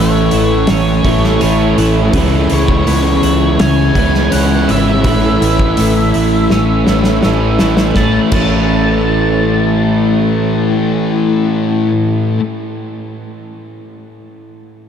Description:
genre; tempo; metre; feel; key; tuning
rock, shoegaze and dream pop; 82 BPM; 4/4; straight; A major; A4 = 439 Hz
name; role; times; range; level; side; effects
octave-fuzz lead guitar; melody; 0.0-11.6 s; C#5 to A5; -21 LUFS; equal; distortion, analog delay
twelve-string electric guitar; arpeggios; 0.0-12.4 s; E3 to G#4; -22 LUFS; right 6 dB; lush chorus, analog delay
overdriven semi-hollow guitar; riff; 0.0-12.4 s; A2 to E4; -17 LUFS; right 6 dB; reverse reverb
thick fuzz guitar; riff; 0.0-12.4 s; A2 to C#4; -15 LUFS; left 6 dB; distortion, ensemble chorus
vintage muted fingered electric bass; bass; 0.0-12.3 s; G#1 to C#2; -17 LUFS; equal; none
loose indie drum kit; drums; 0.3-8.5 s; crash cymbal, hi-hat, kick drum, snare drum; -18 LUFS; equal; none
room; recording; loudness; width
wet huge ambient reverb, RT60 7.3 s; dreamy mix soaked in reverb; -10 LUFS; side -8 dB against mid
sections
0.0-8.0 A section; 8.0-10.9 B section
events
drum fill 6.5-8.0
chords
0.0 A; 2.1 C#m7; 5.1 A; 8.0 Amaj7

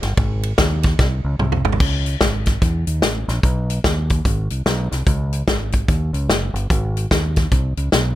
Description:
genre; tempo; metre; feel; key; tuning
uptempo gospel; 147 BPM; 4/4; swing 63% on 8ths; C# minor; A4 = 440 Hz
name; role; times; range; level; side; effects
fingered electric bass; bass; 0.0-8.1 s; F#1 to E2; -20 LUFS; equal; none
natural country drum kit; drums; 0.0-8.0 s; crash cymbal, hi-hat, kick drum, ride cymbal, snare drum, toms; -18 LUFS; equal; none
room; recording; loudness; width
little or no reverb; none; -17 LUFS; side -14 dB against mid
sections
0.0-1.8 A section; 1.8-8.2 B section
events
drum fill 1.0-1.8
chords
none

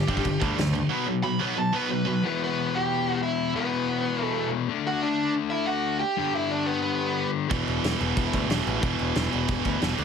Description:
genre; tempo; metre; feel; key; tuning
punk rock; 182 BPM; 4/4; straight; E minor; A4 = 441 Hz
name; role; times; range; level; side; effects
smooth overdriven lead guitar; melody; 0.0-7.3 s; B3 to B5; -28 LUFS; right 2 dB; ping-pong delay
distorted electric guitar; riff; 0.0-10.0 s; E2 to D4; -28 LUFS; left 9 dB; distortion
tight distorted guitar; riff; 0.0-2.2, 7.5-10.0 s; E2 to D4; -28 LUFS; right 11 dB; distortion
growling picked electric bass; bass; 0.0-0.8, 7.5-10.0 s; E1 to D2; -30 LUFS; right 1 dB; overdrive
loose indie drum kit; drums; 0.1-0.8, 7.5-10.0 s; crash cymbal, kick drum, snare drum; -29 LUFS; right 1 dB; none
room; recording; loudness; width
light reverb; heavily compressed radio sound; -23 LUFS; side -6 dB against mid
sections
0.0-2.2 A section; 2.2-10.0 B section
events
lead electric guitar solo 0.0-2.2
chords
0.0 G5; 0.9 B5; 2.2 Em; 4.7 D; 6.2 G; 7.5 E5

